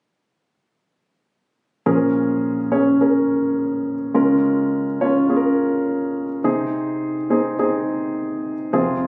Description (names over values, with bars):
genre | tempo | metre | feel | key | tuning
pop | 105 BPM | 4/4 | swing 56% on 16ths | Bb minor | A4 = 440 Hz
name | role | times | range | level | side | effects
warm grand piano | accompaniment | 1.9-9.1 s | F2 to Db5 | -20 LUFS | equal | none
room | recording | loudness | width
light reverb | recorded on a phone in the room, club reverb, compression | -20 LUFS | mono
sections
1.9-9.1 A section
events
none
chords
1.9 Bbm7; 4.2 Db6; 6.4 Ab/C